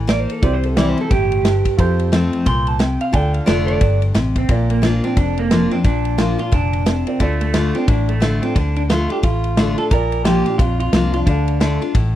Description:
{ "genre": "honky-tonk and classic country", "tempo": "177 BPM", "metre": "4/4", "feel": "swing 61% on 8ths", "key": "unclear", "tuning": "A4 = 436 Hz", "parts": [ { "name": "picked steel-string acoustic guitar", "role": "accompaniment", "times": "0.0-12.2 s", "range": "F2 to F4", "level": "-20 LUFS", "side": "left 3 dB", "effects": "none" }, { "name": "warm upright piano", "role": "accompaniment", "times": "0.0-12.2 s", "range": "E4 to F5", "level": "-29 LUFS", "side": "right 3 dB", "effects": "none" }, { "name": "vintage muted fingered electric bass", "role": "bass", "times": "0.0-12.2 s", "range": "F1 to F2", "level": "-20 LUFS", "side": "equal", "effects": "none" }, { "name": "electric guitar through a small old amp", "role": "second line", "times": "0.1-11.9 s", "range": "A3 to C6", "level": "-22 LUFS", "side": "right 3 dB", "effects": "tape echo" }, { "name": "natural country drum kit", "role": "drums", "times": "0.1-12.0 s", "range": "kick drum, ride cymbal, snare drum", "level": "-18 LUFS", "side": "equal", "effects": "none" } ], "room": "studio reverb", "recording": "dry, close 1970s-style studio recording", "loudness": "-15 LUFS", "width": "side -12 dB against mid", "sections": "0.0-4.5 A section; 4.5-12.2 B section", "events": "clean electric guitar solo 0.0-4.5, 4.5-12.2", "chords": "0.4 C; 1.8 F; 3.1 Dm; 4.5 Bb; 7.2 Dm; 9.9 Bb; 11.3 Dm" }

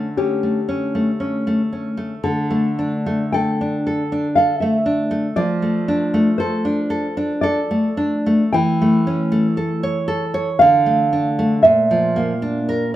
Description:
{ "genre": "romantic duo for nylon-string guitar and classical guitar", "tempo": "58 BPM", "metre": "3/4", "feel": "rubato", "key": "D minor", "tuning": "A4 = 440 Hz", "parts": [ { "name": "nylon-string guitar", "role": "melody", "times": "0.0-13.0 s", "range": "G4 to G5", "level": "-17 LUFS", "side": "right 1 dB", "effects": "none" }, { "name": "nylon-string guitar", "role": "accompaniment", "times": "0.0-13.0 s", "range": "Bb2 to C#5", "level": "-18 LUFS", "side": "equal", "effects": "none" } ], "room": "light reverb", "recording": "band playing live in one room", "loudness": "-16 LUFS", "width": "side -13 dB against mid", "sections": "0.0-13.0 A section", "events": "none", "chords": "0.0 A7/D; 2.2 D5; 5.4 Dm/F; 8.5 A7/E; 10.6 Dm; 11.6 Bb" }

